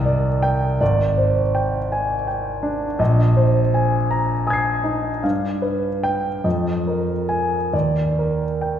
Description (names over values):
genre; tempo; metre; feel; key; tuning
classical, impressionist solo piano; 45-56 BPM (dotted quarters); 6/8; rubato; unclear; A4 = 440 Hz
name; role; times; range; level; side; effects
warm concert grand piano; solo; 0.0-8.8 s; Ab1 to C7; -18 LUFS; equal; none
room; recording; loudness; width
wet concert hall reverb, RT60 2.1 s; recorded in a church or concert hall; -18 LUFS; side -9 dB against mid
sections
0.0-8.8 A section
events
none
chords
0.0 Cmadd9; 0.8 Abmaj7#11; 3.0 Bb9sus4; 5.2 G7; 6.5 Fm7; 7.7 Ebmaj7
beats
| 0.80 1.91 | 3.00 4.11 | 5.24 6.45 | 7.74